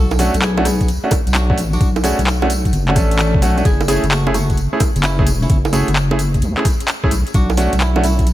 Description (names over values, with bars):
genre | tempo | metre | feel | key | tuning
UK garage, two-step garage | 130 BPM | 4/4 | swing 67% on 16ths | unclear | A4 = 440 Hz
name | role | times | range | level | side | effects
flamenco guitar | melody | 0.0-8.3 s | A3 to A4 | -25 LUFS | equal | ping-pong delay
deep soft wobble bass | bass | 0.0-8.3 s | E1 to C#2 | -17 LUFS | equal | chorus, tube saturation
garage drum kit | drums | 0.1-8.3 s | bongos, handclaps, hi-hat, rim click | -22 LUFS | right 2 dB | none
tambourine | percussion | 0.1-8.3 s | none | -30 LUFS | equal | none
clear concert grand piano | stabs | 0.2-8.0 s | A3 to A4 | -20 LUFS | right 1 dB | ping-pong delay
electronic kick drum | drums | 0.8-8.3 s | none | -17 LUFS | equal | overdrive
room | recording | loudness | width
digital ambience | none | -13 LUFS | side -14 dB against mid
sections
0.0-8.3 A section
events
none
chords
0.0 Bm7; 3.7 F#m9; 7.1 Bm7